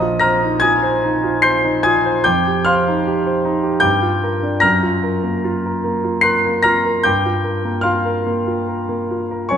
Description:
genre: classical, impressionist solo piano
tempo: 74 BPM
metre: 3/4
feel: rubato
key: unclear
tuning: A4 = 443 Hz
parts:
  - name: clear concert grand piano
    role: solo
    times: 0.0-9.6 s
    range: Bb1 to C7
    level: -14 LUFS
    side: equal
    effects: none
room: moderate scoring stage reverb, RT60 1.6 s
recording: none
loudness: -14 LUFS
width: side -8 dB against mid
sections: 0.0-9.6 A section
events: none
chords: 0.0 Bb11; 2.2 Fsus2; 3.8 Gm7; 4.6 Gbmaj7; 7.1 Gm7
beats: 0.62 1.44 | 2.25 3.06 3.85 | 4.65 5.45 6.25 | 7.06 7.87 8.68 | 9.51

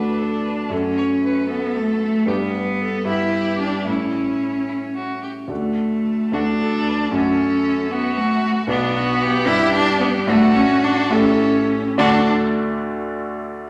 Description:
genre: quick classical-period movement for piano trio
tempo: 68-78 BPM (dotted quarters)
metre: 6/8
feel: rubato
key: D major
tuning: A4 = 440 Hz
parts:
  - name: rich violin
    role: melody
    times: 0.0-12.3 s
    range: D4 to C#5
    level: -28 LUFS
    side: equal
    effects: none
  - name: rich cello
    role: second line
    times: 0.0-12.3 s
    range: A3 to E4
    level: -22 LUFS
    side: equal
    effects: none
  - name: warm grand piano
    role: accompaniment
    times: 0.0-13.7 s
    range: B1 to D5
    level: -24 LUFS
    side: equal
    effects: none
room: wet recital hall reverb, RT60 1.4 s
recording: none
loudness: -19 LUFS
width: mono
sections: 0.0-12.0 A section; 12.0-13.6 B section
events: none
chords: 0.0 D; 0.7 F#m; 2.3 G; 3.1 Em/G; 3.9 A; 5.5 D; 7.1 F#m; 8.7 Bm; 9.5 G6; 10.3 D/A; 11.1 A7; 12.0 D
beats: | 0.71 1.50 | 2.29 3.08 | 3.87 4.67 | 5.50 6.34 | 7.14 7.92 | 8.70 9.48 | 10.29 11.12 | 11.98 12.81

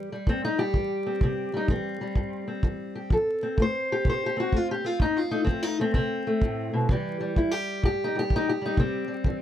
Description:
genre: acoustic country blues, solo or duo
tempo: 127 BPM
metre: 4/4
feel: swing 63% on 8ths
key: C major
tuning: A4 = 440 Hz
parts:
  - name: fingerpicked steel-string acoustic guitar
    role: melody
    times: 0.0-9.4 s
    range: F2 to C5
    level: -26 LUFS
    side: left 1 dB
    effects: none
  - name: kick drum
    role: drums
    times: 0.3-9.4 s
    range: none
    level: -25 LUFS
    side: equal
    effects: none
room: moderate booth ambience, RT60 0.2 s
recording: dark, warm production, vinyl crackle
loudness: -24 LUFS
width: side -11 dB against mid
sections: 0.0-9.4 A section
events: none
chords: 0.0 C; 3.1 F; 6.9 C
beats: 0.27 0.74 | 1.22 1.69 2.17 2.64 | 3.11 3.59 4.06 4.53 | 5.01 5.48 5.95 6.42 | 6.90 7.37 7.84 8.31 | 8.78 9.26

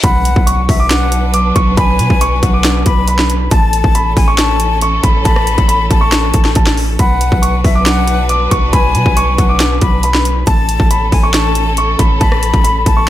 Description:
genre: hip hop, trap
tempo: 138 BPM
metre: 4/4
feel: half-time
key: B dorian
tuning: A4 = 440 Hz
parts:
  - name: dark concert grand piano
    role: melody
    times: 0.0-13.1 s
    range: A5 to D6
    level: -17 LUFS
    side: right 1 dB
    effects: low-pass filter, ping-pong delay
  - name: breathy jazz flute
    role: second line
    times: 0.0-13.1 s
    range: E5 to B5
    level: -20 LUFS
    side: left 7 dB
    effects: ping-pong delay
  - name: warm symphonic string section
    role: sustained chords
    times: 0.0-13.1 s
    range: E3 to B4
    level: -21 LUFS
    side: equal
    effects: none
  - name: long sustained 808-style bass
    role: bass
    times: 0.0-13.1 s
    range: A1 to B2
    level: -15 LUFS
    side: equal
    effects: none
  - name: trap drum kit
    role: drums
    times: 0.0-13.0 s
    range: hi-hat, kick drum, rim click, snare drum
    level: -14 LUFS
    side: equal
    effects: overdrive
  - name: reverse cymbal and impact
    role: sound effects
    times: 0.0-1.8 s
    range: none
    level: -25 LUFS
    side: equal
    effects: none
room: little or no reverb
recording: none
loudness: -10 LUFS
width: side -13 dB against mid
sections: 0.0-13.1 A section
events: impact 0.0-1.8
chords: 0.0 Bm; 3.5 A; 7.0 Bm; 10.5 A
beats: | 0.04 0.47 0.91 1.34 | 1.77 2.21 2.65 3.08 | 3.51 3.95 4.38 4.82 | 5.25 5.69 6.12 6.56 | 6.99 7.43 7.86 8.30 | 8.73 9.17 9.60 10.04 | 10.47 10.90 11.34 11.78 | 12.21 12.64 13.08

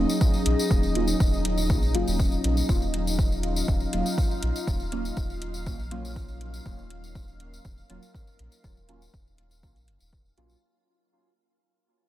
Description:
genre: dub techno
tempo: 121 BPM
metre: 4/4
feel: straight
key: Eb minor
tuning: A4 = 440 Hz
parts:
  - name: warbly tape-like pad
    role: sustained chords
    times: 0.0-10.6 s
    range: Gb3 to Bb4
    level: -30 LUFS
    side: left 1 dB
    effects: chorus, built-in reverb, sidechain pumping
  - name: deep mellow chord stab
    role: stabs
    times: 0.0-10.6 s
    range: Gb3 to F4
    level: -33 LUFS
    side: right 1 dB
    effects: chorus, phaser, vintage 12-bit sampler grit, sidechain pumping, dub echo
  - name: soft dub sub bass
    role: bass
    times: 0.0-10.6 s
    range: Eb1 to Bb1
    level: -29 LUFS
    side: equal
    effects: tube saturation, sidechain pumping
  - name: bubbling stepped-filter texture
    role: texture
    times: 0.0-10.7 s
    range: Eb4 to F5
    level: -37 LUFS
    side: equal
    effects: chorus, built-in reverb, sidechain pumping
  - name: tambourine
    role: percussion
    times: 0.1-10.6 s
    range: none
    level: -37 LUFS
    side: left 3 dB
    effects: none
  - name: electronic kick drum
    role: drums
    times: 0.2-10.2 s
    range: none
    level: -25 LUFS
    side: equal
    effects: overdrive
  - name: electronic hi-hat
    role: drums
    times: 0.5-10.5 s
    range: none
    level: -34 LUFS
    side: equal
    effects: overdrive
room: light reverb, digital ambience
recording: none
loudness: -23 LUFS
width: side -13 dB against mid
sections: 0.0-10.6 A section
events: fade-out 0.0-10.6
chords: 0.0 Ebm9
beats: 0.21 | 0.70 1.20 1.70 2.19 | 2.69 3.19 3.68 4.18 | 4.67 5.17 5.66 6.16 | 6.66 7.15 7.65 8.14 | 8.64 9.13 9.63 10.13

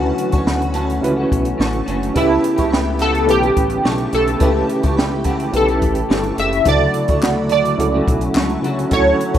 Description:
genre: indie pop, bedroom pop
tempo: 107 BPM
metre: 4/4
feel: straight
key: D major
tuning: A4 = 439 Hz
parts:
  - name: chorused retro synth keys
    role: melody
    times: 0.0-9.4 s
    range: E4 to E5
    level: -18 LUFS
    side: equal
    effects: analog chorus, slapback echo
  - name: shimmering bell with halo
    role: second line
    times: 0.0-9.4 s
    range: E5 to C#6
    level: -29 LUFS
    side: right 4 dB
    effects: ensemble chorus, analog chorus, slapback echo
  - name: electric guitar through a small old amp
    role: accompaniment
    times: 0.0-9.4 s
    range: C#3 to G4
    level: -24 LUFS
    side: left 2 dB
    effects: ensemble chorus, warbly pitch drift
  - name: reed electric piano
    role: accompaniment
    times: 0.0-9.4 s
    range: C#3 to B4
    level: -22 LUFS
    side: right 2 dB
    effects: fast tremolo, cassette tape
  - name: lush unison pad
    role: sustained chords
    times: 0.0-9.4 s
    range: C#3 to G4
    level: -26 LUFS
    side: equal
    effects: chorus, phaser
  - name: chorused synth bass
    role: bass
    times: 0.0-9.4 s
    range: F#1 to D2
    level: -22 LUFS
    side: left 1 dB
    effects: none
  - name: compact cocktail drum kit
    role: drums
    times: 0.2-9.4 s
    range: hi-hat, kick drum, snare drum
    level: -20 LUFS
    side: equal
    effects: none
  - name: group handclap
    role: percussion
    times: 7.2-8.5 s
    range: none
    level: -28 LUFS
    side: left 4 dB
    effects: none
room: small room reverb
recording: rough home demo mix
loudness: -14 LUFS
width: side -10 dB against mid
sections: 0.0-9.4 A section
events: synth keys solo 0.0-9.4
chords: 0.0 Dmaj7; 2.2 A7; 6.7 Dmaj7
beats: 0.47 1.03 1.60 | 2.16 2.72 3.29 3.85 | 4.41 4.97 5.54 6.10 | 6.66 7.23 7.79 8.35 | 8.91

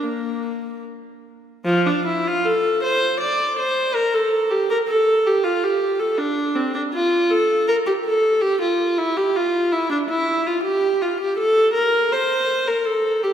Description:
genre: classical, baroque-style suite movement for unaccompanied viola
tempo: 80 BPM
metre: 3/4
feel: rubato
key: F major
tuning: A4 = 439 Hz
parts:
  - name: rich viola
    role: solo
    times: 0.0-13.3 s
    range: F3 to D5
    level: -18 LUFS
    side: equal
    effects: none
room: wet church reverb, RT60 2.9 s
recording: heard from further back in the room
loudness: -18 LUFS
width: side -9 dB against mid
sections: 0.0-1.6 A section; 1.6-13.3 A section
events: none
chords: none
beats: 0.02 0.82 | 1.65 2.44 3.19 | 3.94 4.69 5.43 | 6.18 6.93 7.68 | 8.42 9.16 9.90 | 10.64 11.37 12.11 | 12.85

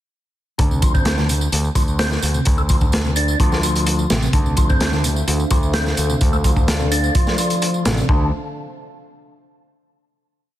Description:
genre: breakbeat, breaks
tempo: 128 BPM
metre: 4/4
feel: straight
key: D minor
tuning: A4 = 440 Hz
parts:
  - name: percussive tonewheel organ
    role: riff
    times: 0.6-8.3 s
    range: C3 to D4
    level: -23 LUFS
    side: equal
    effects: overdrive, chorus vibrato, fast rotary speaker, ping-pong delay
  - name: overdriven picked electric bass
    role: bass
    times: 0.6-8.3 s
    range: A1 to D2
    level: -20 LUFS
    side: equal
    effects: none
  - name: crunchy breakbeat drum kit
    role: drums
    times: 0.6-8.2 s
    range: hi-hat, kick drum, snare drum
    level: -18 LUFS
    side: equal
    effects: none
  - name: tambourine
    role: drums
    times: 0.6-8.1 s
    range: none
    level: -30 LUFS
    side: right 4 dB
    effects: none
  - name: dark analog pad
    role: sustained chords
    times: 5.0-8.3 s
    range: D4 to F5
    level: -27 LUFS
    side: equal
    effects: chorus, sidechain pumping
room: light reverb, small room reverb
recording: dense, heavily limited modern master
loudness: -15 LUFS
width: side -13 dB against mid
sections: 0.6-8.1 groove; 8.1-10.0 final chord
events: none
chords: 0.6 Dm9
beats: | 0.59 1.06 1.53 2.00 | 2.46 2.93 3.40 3.87 | 4.34 4.81 5.28 5.75 | 6.21 6.68 7.15 7.62 | 8.09

